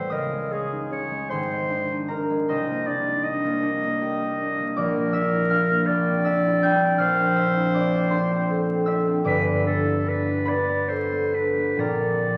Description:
classical, impressionist duo for clarinet and harp; 42-55 BPM (dotted quarters); 6/8; rubato; A4 = 438 Hz
warm clarinet; melody; 0.0-12.4 s; Ab4 to Eb5; -28 LUFS; equal
concert harp; accompaniment; 0.0-12.4 s; G1 to G6; -25 LUFS; equal
wet concert hall reverb, RT60 2.1 s; vinyl crackle; -23 LUFS; mono
0.0-12.4 A section
0.1 Dbsus2; 1.3 Ab; 2.5 Cm9; 4.8 Bb; 5.9 Dm9/Bb; 7.0 F69/Bb; 9.3 G13; 11.8 Bb9
| 0.13 1.32 | 2.50 3.63 | 4.78 5.87 | 7.00 8.12 | 9.27 10.47 | 11.80

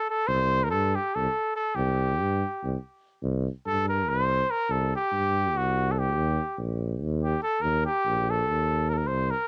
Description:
balkan folk; 286 BPM (eighths); 7/8; straight; C dorian sharp4; A4 = 439 Hz
warm trumpet; melody; 0.0-9.5 s; F#4 to C5; -28 LUFS; equal; cassette tape, plate reverb
mellow tuba; bass; 0.3-9.3 s; Bb1 to G2; -30 LUFS; equal
light reverb; home recording on cassette; -27 LUFS; mono
0.0-3.2 A section; 3.2-9.5 B section
trumpet solo 3.2-9.5
0.3 C5; 6.2 Eb
0.09 | 0.30 0.51 0.71 0.92 1.13 1.34 1.55 | 1.76 1.97 2.18 2.38 2.60 2.80 3.01 | 3.22 3.43 3.64 3.85 4.06 4.27 4.48 | 4.69 4.90 5.11 5.32 5.53 5.74 5.95 | 6.16 6.37 6.58 6.79 7.00 7.21 7.42 | 7.63 7.84 8.04 8.26 8.46 8.67 8.88 | 9.09 9.30

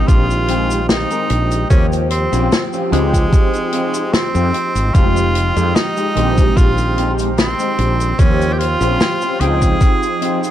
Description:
vaporwave; 74 BPM; 4/4; straight; A4 = 440 Hz
edgy tenor saxophone; melody; 0.0-10.5 s; Ab3 to Ab4; -20 LUFS; right 1 dB; analog delay
warbly lo-fi synth keys; accompaniment; 0.0-10.5 s; Eb3 to G5; -22 LUFS; right 1 dB; ensemble chorus
warbly tape-like pad; sustained chords; 0.0-10.5 s; Ab3 to G5; -28 LUFS; equal; chorus, built-in reverb, vintage 12-bit sampler grit
mellow electric guitar; riff; 0.0-10.5 s; Ab3 to Bb4; -24 LUFS; left 3 dB; ensemble chorus, vintage 12-bit sampler grit
woody fretless electric bass; bass; 0.1-9.7 s; F1 to F2; -18 LUFS; equal
electronic kick drum; drums; 0.1-10.0 s; -13 LUFS; equal
natural country drum kit; drums; 0.1-10.5 s; cabasa, hi-hat, snare drum; -21 LUFS; left 1 dB
light reverb, small room ambience; cassette tape; -13 LUFS; side -12 dB against mid
0.0-10.5 A section
0.0 Bb13sus4; 1.7 Eb13; 2.9 Dbmaj9#11; 4.9 Fm9; 6.2 Bb13sus4; 8.2 Eb13; 9.4 Dbmaj9#11
0.08 0.89 | 1.70 2.51 3.32 4.13 | 4.95 5.76 6.57 7.38 | 8.19 9.00 9.81

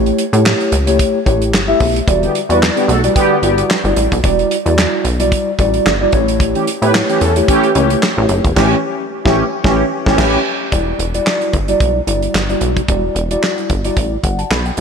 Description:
early-eighties boogie funk; 111 BPM; 4/4; swing 56% on 16ths; E dorian; A4 = 440 Hz
mellow tine electric piano; accompaniment; 0.0-14.8 s; F#3 to B5; -16 LUFS; equal; lush chorus
plucky analog bass; bass; 0.0-14.8 s; E1 to A2; -17 LUFS; equal
damped 70s drum kit; drums; 0.1-14.8 s; crash cymbal, handclaps, hi-hat, kick drum, snare drum; -18 LUFS; equal
mellow synth brass; second line; 2.2-10.4 s; D3 to B4; -17 LUFS; right 1 dB; chorus, ping-pong delay
moderate plate reverb, RT60 3.1 s; dreamy mix soaked in reverb; -12 LUFS; side -6 dB against mid
0.0-10.7 A section; 10.7-14.8 B section
band accent 8.6-10.7
0.0 A7; 2.1 Em9; 6.1 A7; 10.7 Em9
0.45 0.99 1.53 | 2.07 2.62 3.15 3.70 | 4.24 4.78 5.32 5.86 | 6.40 6.94 7.48 8.02 | 8.56 9.10 9.64 10.18 | 10.72 11.26 11.80 12.34 | 12.88 13.43 13.97 14.51

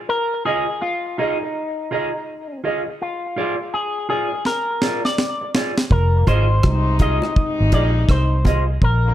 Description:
roots reggae; 82 BPM; 4/4; swing 63% on 16ths; F dorian; A4 = 440 Hz
electric guitar with an envelope filter; melody; 0.1-9.1 s; Eb4 to Eb5; -23 LUFS; left 2 dB; analog chorus, tape echo
mellow electric guitar; accompaniment; 0.5-8.7 s; F4 to Eb5; -25 LUFS; right 3 dB; tape echo
deep reggae drum kit; drums; 4.5-9.0 s; hi-hat, kick drum, rim click, snare drum; -18 LUFS; equal
vintage muted fingered electric bass; bass; 5.9-9.1 s; F1 to C2; -17 LUFS; equal
clear trombone section; second line; 6.1-9.1 s; F2 to Eb4; -26 LUFS; left 4 dB; tape echo
bongos; percussion; 6.3-8.7 s; -30 LUFS; equal
light reverb; -17 LUFS; side -12 dB against mid
0.0-9.1 A section
drum fill 4.5-5.9
0.1 Fm7; 3.0 Fm6; 5.9 Fm7
| 0.09 0.81 1.54 2.27 | 3.00 3.72 4.45 5.18 | 5.91 6.63 7.36 8.09 | 8.82

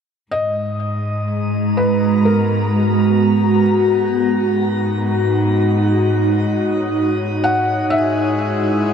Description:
ambient; 63 BPM; 4/4; straight; G# minor; A4 = 440 Hz
felt-muted upright piano; melody; 0.3-8.9 s; A#4 to F#5; -23 LUFS; left 1 dB; ping-pong delay
glassy FM pad; sustained chords; 1.3-8.9 s; G#3 to A#5; -17 LUFS; right 1 dB; ensemble chorus, built-in reverb, phaser
dark chamber cello section; bass; 0.3-8.9 s; G#2; -21 LUFS; left 1 dB
hand-pumped harmonium; drone; 7.9-8.9 s; G#3; -24 LUFS; left 4 dB
wet shimmer reverb, RT60 8.9 s; dark, warm production; -15 LUFS; side -7 dB against mid
0.3-8.9 A section
filter sweep on ambient pad 0.3-8.9
0.3 G#m9; 4.1 D#m7/G#; 7.9 C#m7/G#
| 0.31 1.26 2.21 3.17 | 4.12 5.07 6.02 6.97 | 7.93 8.88

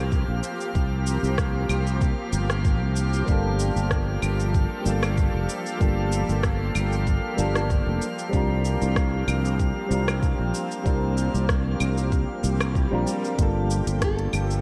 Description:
sunset chillout; 95 BPM; 4/4; swing 54% on 16ths; A4 = 443 Hz
shimmering ambient pad; sustained chords; 0.0-14.6 s; F3 to A4; -34 LUFS; equal; chorus, built-in reverb
sustaining fretless electric bass; bass; 0.0-14.6 s; F1 to C2; -27 LUFS; equal
drifting glass-harmonics texture; texture; 0.0-14.6 s; F5 to G6; -40 LUFS; equal; chorus, built-in reverb
electronic kick drum; drums; 0.1-14.2 s; -27 LUFS; equal
smooth R&B drum kit; drums; 0.1-14.6 s; claves, hi-hat, rim click, shaker; -34 LUFS; equal; slapback echo
soft electric-piano-like synth keys; accompaniment; 3.2-14.6 s; G3 to Bb4; -32 LUFS; equal; chorus, tape echo, slapback echo
swell; sound effects; 12.5-13.4 s; -40 LUFS; equal
nylon-string guitar; melody; 14.0-14.6 s; A4; -33 LUFS; equal; tape echo
light reverb, digital ambience; -24 LUFS; mono
0.0-14.6 A section
swell 12.5-13.4
0.0 C7sus4; 3.3 Gm9; 8.0 C7sus4; 13.4 Gm9
0.12 | 0.75 1.39 2.02 2.65 | 3.28 3.91 4.54 5.17 | 5.81 6.44 7.07 7.70 | 8.33 8.96 9.60 10.23 | 10.86 11.49 12.12 12.75 | 13.39 14.02

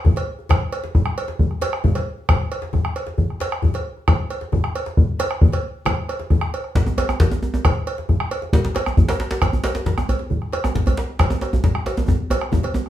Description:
west african traditional, West African drum ensemble; 135 BPM; 4/4; straight
djembe; percussion; 0.0-12.8 s; -23 LUFS; left 3 dB
bombo; percussion; 0.1-12.9 s; -19 LUFS; equal
cowbell; percussion; 0.2-12.7 s; -27 LUFS; right 3 dB
djembe; percussion; 6.8-12.8 s; -22 LUFS; right 1 dB
wet studio ambience, RT60 0.5 s; heard from further back in the room, studio reverb; -18 LUFS; side -12 dB against mid
0.0-12.9 A section
drum fill 12.1-12.9
0.05 0.50 0.95 | 1.40 1.85 2.29 2.74 | 3.19 3.63 4.08 4.53 | 4.97 5.42 5.87 6.31 | 6.76 7.20 7.65 8.09 | 8.54 8.98 9.42 9.87 | 10.31 10.76 11.20 11.64 | 12.08 12.53

